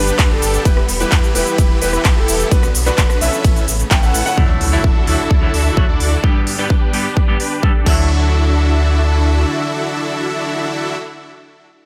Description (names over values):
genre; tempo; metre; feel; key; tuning
EDM, festival progressive house; 129 BPM; 4/4; straight; D major; A4 = 441 Hz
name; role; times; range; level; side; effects
rich studio string section; sustained chords; 0.0-11.0 s; C#3 to A4; -28 LUFS; equal; sidechain pumping, low-pass filter
dark baby grand piano; arpeggios; 0.0-4.4 s; A4 to G5; -24 LUFS; equal; sidechain pumping, digital delay
dense compressed supersaw; riff; 0.0-11.0 s; C#4 to G5; -23 LUFS; equal; sidechain pumping, low-pass filter, digital delay
saturated sub bass; bass; 0.0-9.5 s; D1 to E2; -20 LUFS; equal; tube saturation, sidechain pumping
big-room dance drum kit; drums; 0.1-8.0 s; crash cymbal, handclaps, hi-hat, ride cymbal, rim click, shaker; -24 LUFS; equal; overdrive
electronic kick drum; drums; 0.2-8.0 s; none; -16 LUFS; equal; overdrive
clean electric guitar; accompaniment; 4.4-11.0 s; G2 to A4; -27 LUFS; equal; sidechain pumping, digital delay
impact; sound effects; 4.4-6.2 s; none; -29 LUFS; equal; none
room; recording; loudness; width
light reverb; none; -15 LUFS; mono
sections
0.0-4.4 A section; 4.4-8.1 B section; 8.1-11.8 C section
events
drop 0.0-4.4; impact 4.4-6.2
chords
0.0 G; 0.7 Em; 2.5 Bm; 3.4 Aadd9; 4.4 Dadd9; 6.2 G; 7.9 Dadd9